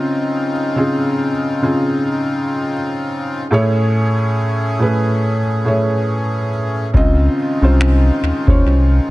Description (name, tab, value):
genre	contemporary R&B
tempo	70 BPM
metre	4/4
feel	swing 58% on 16ths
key	Db major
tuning	A4 = 442 Hz
part	felt-muted upright piano	accompaniment	0.0-9.1 s	A2 to Eb5	-16 LUFS	equal	none
part	accordion	sustained chords	0.0-9.1 s	Db3 to G#4	-24 LUFS	left 2 dB	sidechain pumping
part	rubbery square bass	bass	6.9-9.0 s	C2 to Eb2	-13 LUFS	equal	none
part	booming analog drum machine	drums	6.9-8.6 s	finger snaps, kick drum	-15 LUFS	equal	none
room	light reverb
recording	echo-heavy mix, nothing above 10.9 kHz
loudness	-14 LUFS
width	side -18 dB against mid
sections	0.0-9.1 A section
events	none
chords	0.0 Dbmaj9; 3.5 Amaj7; 6.9 Dbmaj9